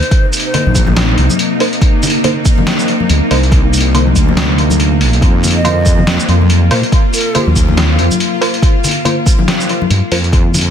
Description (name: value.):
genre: deep dubstep.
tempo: 141 BPM.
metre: 4/4.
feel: swing 58% on 16ths, half-time.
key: C minor.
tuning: A4 = 435 Hz.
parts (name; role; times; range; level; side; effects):
breathy bright ney; melody; 0.0-0.9, 5.6-7.5 s; Bb4 to Eb5; -22 LUFS; right 1 dB; dub echo.
bowed-like drone; sustained chords; 0.0-10.7 s; C3 to F4; -18 LUFS; left 1 dB; built-in reverb.
trip hop sampler-style drum kit; drums; 0.0-10.7 s; hi-hat, shaker, snare drum; -17 LUFS; equal; none.
electronic kick drum; drums; 0.1-10.4 s; none; -11 LUFS; equal; none.
filtered dub chord stab; stabs; 0.5-10.2 s; Bb3 to C5; -20 LUFS; right 2 dB; chorus, dub echo.
congas; percussion; 0.5-10.6 s; none; -19 LUFS; left 5 dB; dub echo.
wobble bass; bass; 0.7-10.7 s; Bb1 to Bb2; -12 LUFS; equal; chorus.
room: light reverb, digital ambience.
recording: dense, heavily limited modern master.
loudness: -9 LUFS.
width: side -8 dB against mid.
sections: 0.0-10.7 A section.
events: none.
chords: 0.0 Cm7; 5.2 Fsus4.